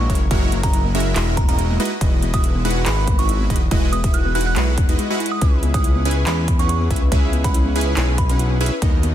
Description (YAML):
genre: future bass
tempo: 141 BPM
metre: 4/4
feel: swing 53% on 16ths, half-time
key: unclear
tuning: A4 = 440 Hz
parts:
  - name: glassy synth bell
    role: melody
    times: 0.0-8.4 s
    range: A#5 to F#6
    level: -28 LUFS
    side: right 4 dB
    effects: chorus, vintage 12-bit sampler grit, sidechain pumping, ping-pong delay
  - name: thumb-piano-like synth pluck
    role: arpeggios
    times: 0.0-9.1 s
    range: G#3 to B4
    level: -29 LUFS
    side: left 2 dB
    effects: chorus, cassette tape, sidechain pumping, ping-pong delay
  - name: supersaw stab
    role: riff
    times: 0.0-9.1 s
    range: G#3 to G#5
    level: -23 LUFS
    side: right 1 dB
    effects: sidechain pumping, ping-pong delay
  - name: fat analog bass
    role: bass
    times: 0.0-9.1 s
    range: E1 to E2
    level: -20 LUFS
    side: equal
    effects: sidechain pumping
  - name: big-room dance drum kit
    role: drums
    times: 0.1-9.1 s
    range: handclaps, hi-hat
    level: -28 LUFS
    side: right 2 dB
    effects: studio reverb
  - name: electronic kick drum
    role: drums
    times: 0.1-8.9 s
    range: none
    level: -18 LUFS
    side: equal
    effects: studio reverb
room: digital ambience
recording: dense, heavily limited modern master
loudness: -16 LUFS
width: side -11 dB against mid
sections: 0.0-9.1 A section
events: none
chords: 0.0 F#9; 1.8 Emaj9; 5.4 C#m7